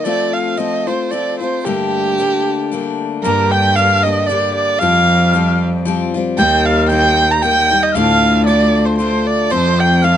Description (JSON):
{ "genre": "celtic folk, Celtic waltz", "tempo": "114 BPM", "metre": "3/4", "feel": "swing 54% on 8ths", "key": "G minor", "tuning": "A4 = 440 Hz", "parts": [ { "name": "warm erhu", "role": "melody", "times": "0.0-10.2 s", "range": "G4 to Bb5", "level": "-16 LUFS", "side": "right 3 dB", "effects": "none" }, { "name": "picked steel-string acoustic guitar", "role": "accompaniment", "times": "0.0-10.2 s", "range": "D2 to G4", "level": "-20 LUFS", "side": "left 7 dB", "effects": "none" }, { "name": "breathy mellow mid whistle", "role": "second line", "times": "3.2-10.2 s", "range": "Bb5 to G6", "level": "-20 LUFS", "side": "left 5 dB", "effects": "none" }, { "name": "rich cello", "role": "bass", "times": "3.2-10.2 s", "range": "D2 to G2", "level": "-16 LUFS", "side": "right 1 dB", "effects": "none" } ], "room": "little or no reverb", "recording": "nothing above 10.5 kHz", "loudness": "-12 LUFS", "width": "side -10 dB against mid", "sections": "0.0-3.2 A section; 3.2-10.2 B section", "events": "none", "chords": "0.1 F; 1.6 Gmadd9; 3.2 Gm; 4.8 Fsus2; 6.4 Eb; 7.9 Dm; 9.5 F" }